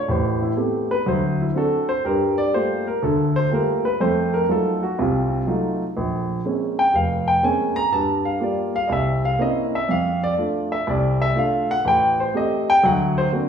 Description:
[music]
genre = solo jazz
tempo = 122 BPM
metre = 4/4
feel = swing 68% on 8ths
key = F major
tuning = A4 = 441 Hz
[part]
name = warm baby grand piano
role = solo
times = 0.0-13.5 s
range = F1 to Bb5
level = -18 LUFS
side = equal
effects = none
[sound]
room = wet large studio reverb, RT60 1.2 s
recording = heard from further back in the room, small room ambience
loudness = -18 LUFS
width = side -7 dB against mid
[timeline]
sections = 0.0-13.5 A section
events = grand piano solo 0.0-13.5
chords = 0.1 Am9; 1.1 D7; 2.0 Gm9; 4.0 F7b9; 6.0 Bbm9; 7.9 Gm7; 8.9 C7b9; 9.9 F6; 11.8 Am7b5; 12.8 Daug7

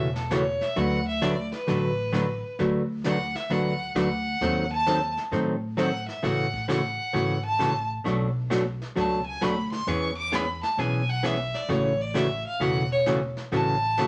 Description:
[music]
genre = country, western swing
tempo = 132 BPM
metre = 4/4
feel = swing 66% on 8ths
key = A major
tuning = A4 = 440 Hz
[part]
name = clear fiddle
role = second line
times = 0.0-14.1 s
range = A4 to D6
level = -30 LUFS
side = equal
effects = none
[part]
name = archtop guitar, miked and amplified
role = accompaniment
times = 0.0-14.1 s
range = B2 to B4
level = -28 LUFS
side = equal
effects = none
[part]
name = upright bass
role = bass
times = 0.0-14.1 s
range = E1 to A2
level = -34 LUFS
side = equal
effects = none
[part]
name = vintage brush drum kit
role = drums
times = 0.2-14.1 s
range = brushed snare drum, hi-hat, kick drum, snare drum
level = -41 LUFS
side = equal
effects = none
[sound]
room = wet studio reverb, RT60 0.5 s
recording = none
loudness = -26 LUFS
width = mono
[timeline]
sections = 0.0-14.1 A section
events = fiddle solo 0.0-14.1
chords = 0.0 A6; 0.8 D6; 4.4 D#dim7; 6.2 A6; 8.1 Bm7; 9.9 E6; 11.7 A6

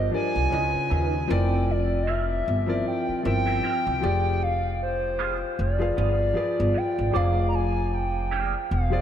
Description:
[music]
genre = R&B, neo-soul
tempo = 77 BPM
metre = 4/4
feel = swing 57% on 16ths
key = unclear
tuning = A4 = 440 Hz
[part]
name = hollow clarinet-like synth lead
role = melody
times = 0.0-9.0 s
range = C5 to Bb5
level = -27 LUFS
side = right 1 dB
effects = chorus, ping-pong delay
[part]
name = warm upright piano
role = accompaniment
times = 0.0-9.0 s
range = Db3 to F5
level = -28 LUFS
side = left 3 dB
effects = lush chorus
[part]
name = upright bass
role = bass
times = 0.0-9.0 s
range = E1 to Eb2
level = -26 LUFS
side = equal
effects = none
[part]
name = electric guitar through a small old amp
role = second line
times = 0.5-8.5 s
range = Bb3 to Cb5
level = -35 LUFS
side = right 6 dB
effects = wah, ensemble chorus
[sound]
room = moderate cathedral reverb, RT60 4.2 s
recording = dreamy mix soaked in reverb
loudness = -22 LUFS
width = side -10 dB against mid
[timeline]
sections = 0.0-9.0 A section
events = none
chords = 0.0 F13sus4; 0.5 Db9; 1.3 C7/F; 4.0 G7b9/F; 7.1 Bb7/F

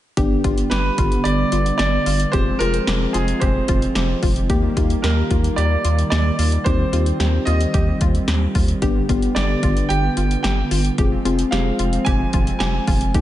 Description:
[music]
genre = synth-pop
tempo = 111 BPM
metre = 4/4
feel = straight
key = unclear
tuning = A4 = 441 Hz
[part]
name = mellow FM electric piano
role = accompaniment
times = 0.2-13.2 s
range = Bb3 to Ab4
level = -25 LUFS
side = left 4 dB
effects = chorus
[part]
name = brassy analog pad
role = sustained chords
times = 0.2-13.2 s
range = D3 to C4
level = -24 LUFS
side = right 2 dB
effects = chorus
[part]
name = analog pluck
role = arpeggios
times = 0.2-13.2 s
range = F4 to G4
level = -30 LUFS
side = left 2 dB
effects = chorus, diffuse ambient delay
[part]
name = round analog bass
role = bass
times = 0.2-13.2 s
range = F1 to Eb2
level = -21 LUFS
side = equal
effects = none
[part]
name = punchy analog drum machine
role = drums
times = 0.2-13.2 s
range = hi-hat, kick drum, snare drum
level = -22 LUFS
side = equal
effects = none
[part]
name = clear baby grand piano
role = melody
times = 0.7-13.1 s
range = Ab4 to Ab5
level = -25 LUFS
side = right 1 dB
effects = lush chorus, diffuse ambient delay
[sound]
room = light reverb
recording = nothing above 10.6 kHz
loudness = -16 LUFS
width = side -13 dB against mid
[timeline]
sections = 0.2-13.2 A section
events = none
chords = 0.2 G; 2.3 Fm; 4.5 Eb; 6.7 Cm/Eb; 8.8 G; 11.0 Fm

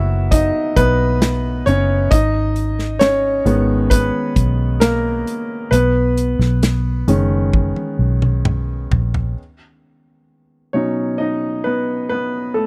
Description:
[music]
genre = pop ballad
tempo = 66 BPM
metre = 4/4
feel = straight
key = B major, B mixolydian from 9.4 s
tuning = A4 = 439 Hz
[part]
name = warm grand piano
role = accompaniment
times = 0.0-12.7 s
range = B2 to F#5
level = -20 LUFS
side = equal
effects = none
[part]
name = vintage muted fingered electric bass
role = bass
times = 0.0-9.3 s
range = F#1 to B1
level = -20 LUFS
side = equal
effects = none
[part]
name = natural country drum kit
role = drums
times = 0.3-9.4 s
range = hi-hat, kick drum, snare drum, toms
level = -20 LUFS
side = equal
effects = none
[sound]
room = studio reverb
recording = dry, close 1970s-style studio recording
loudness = -17 LUFS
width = mono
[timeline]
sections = 0.0-9.4 A section; 9.4-12.7 B section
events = grand piano solo 0.0-9.4, 9.4-12.7; drum fill 7.5-9.4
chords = 0.0 B; 2.1 G#m; 5.7 B6; 9.4 Badd9

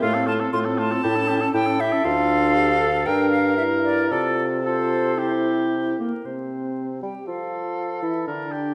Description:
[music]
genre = quick classical-period movement for wind quintet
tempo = 111-122 BPM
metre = 4/4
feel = rubato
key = F major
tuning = A4 = 441 Hz
[part]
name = silver concert flute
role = melody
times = 0.0-8.7 s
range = Bb4 to C6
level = -28 LUFS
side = equal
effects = none
[part]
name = mellow oboe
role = second line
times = 0.0-8.7 s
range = F4 to Bb4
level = -29 LUFS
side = equal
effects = none
[part]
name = dark clarinet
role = accompaniment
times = 0.0-8.7 s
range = Bb3 to Bb4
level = -31 LUFS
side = equal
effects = none
[part]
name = mellow French horn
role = accompaniment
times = 0.0-8.7 s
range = A3 to G4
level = -28 LUFS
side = equal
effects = none
[part]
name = mellow bassoon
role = bass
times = 0.0-8.7 s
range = D2 to G3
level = -29 LUFS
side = equal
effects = none
[sound]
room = wet recital hall reverb, RT60 1.6 s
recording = vinyl crackle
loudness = -22 LUFS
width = mono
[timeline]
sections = 0.0-6.3 A section; 6.3-8.7 B section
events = none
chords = 0.0 F/A; 1.0 A7; 2.0 Dm; 3.1 Gm; 4.1 F/C; 5.2 C; 6.3 F/C

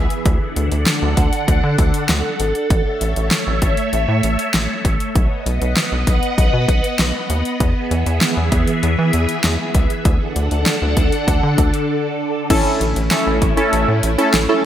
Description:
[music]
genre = synth-pop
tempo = 98 BPM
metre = 4/4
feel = straight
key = A major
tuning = A4 = 440 Hz
[part]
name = phased string machine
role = sustained chords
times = 0.0-14.7 s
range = D3 to F#5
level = -20 LUFS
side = equal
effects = ensemble chorus, phaser
[part]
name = rubbery square bass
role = bass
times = 0.0-14.5 s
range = G#1 to E3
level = -19 LUFS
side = equal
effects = none
[part]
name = pop drum kit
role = drums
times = 0.1-14.5 s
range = crash cymbal, hi-hat, kick drum, snare drum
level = -18 LUFS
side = equal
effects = gated reverb
[part]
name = warm analog keys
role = accompaniment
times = 12.5-14.7 s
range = C#4 to A4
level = -16 LUFS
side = right 1 dB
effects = chorus, phaser
[sound]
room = moderate plate reverb, RT60 1.6 s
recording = bright 1980s-style digital production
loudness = -15 LUFS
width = side -11 dB against mid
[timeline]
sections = 0.0-12.5 A section; 12.5-14.7 B section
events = break 11.9-12.5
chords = 0.3 D; 2.7 A; 5.2 B; 7.6 E; 10.1 D; 12.5 A

